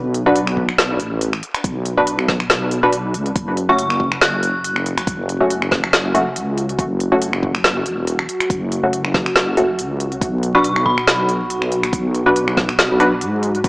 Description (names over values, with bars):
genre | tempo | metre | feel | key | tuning
deep dubstep | 140 BPM | 4/4 | swing 55% on 16ths, half-time | F# minor | A4 = 440 Hz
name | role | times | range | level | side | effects
deep soft wobble bass | bass | 0.0-13.7 s | E1 to G#2 | -22 LUFS | equal | chorus
deep house drum kit | drums | 0.1-13.7 s | finger snaps, hi-hat, snare drum | -19 LUFS | equal | none
filtered dub chord stab | stabs | 0.3-13.1 s | A3 to B4 | -19 LUFS | equal | lush chorus, dub echo
electronic kick drum | drums | 0.6-13.7 s | none | -23 LUFS | equal | none
deep dark ambient pad | sustained chords | 4.7-13.7 s | F#4 | -25 LUFS | equal | chorus, built-in reverb
dark detuned synth bell | melody | 3.7-4.8, 10.5-11.3 s | B5 to F#6 | -21 LUFS | equal | chorus, dub echo
room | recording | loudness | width
moderate spring reverb, RT60 2.3 s | vinyl crackle, small speaker sound | -15 LUFS | side -25 dB against mid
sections
0.0-13.7 A section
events
none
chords
0.0 Bm; 3.4 F#m; 10.2 Bm